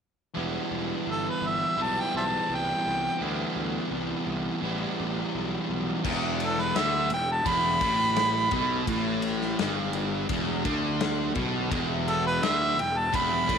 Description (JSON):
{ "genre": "blues rock power trio and southern rock", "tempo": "85 BPM", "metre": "4/4", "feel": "straight", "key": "E minor", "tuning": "A4 = 445 Hz", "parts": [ { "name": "fuzz guitar", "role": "riff", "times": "0.3-13.6 s", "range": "E2 to E4", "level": "-28 LUFS", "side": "right 1 dB", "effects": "distortion" }, { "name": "fuzz fingered electric bass", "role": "bass", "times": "0.4-13.6 s", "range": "E1 to D2", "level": "-33 LUFS", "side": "equal", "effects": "overdrive" }, { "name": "clear harmonica", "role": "melody", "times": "1.1-13.6 s", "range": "A4 to B5", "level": "-26 LUFS", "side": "right 1 dB", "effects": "overdrive, tape echo" }, { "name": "big rock drum kit", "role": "drums", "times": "6.0-13.6 s", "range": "crash cymbal, kick drum, ride cymbal, snare drum", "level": "-32 LUFS", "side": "left 6 dB", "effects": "none" } ], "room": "moderate echo chamber reverb, RT60 1.9 s, studio ambience", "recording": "1960s-style stereo", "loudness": "-25 LUFS", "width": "side -7 dB against mid", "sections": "0.4-6.0 A section; 6.0-13.6 B section", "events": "none", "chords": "0.4 Em" }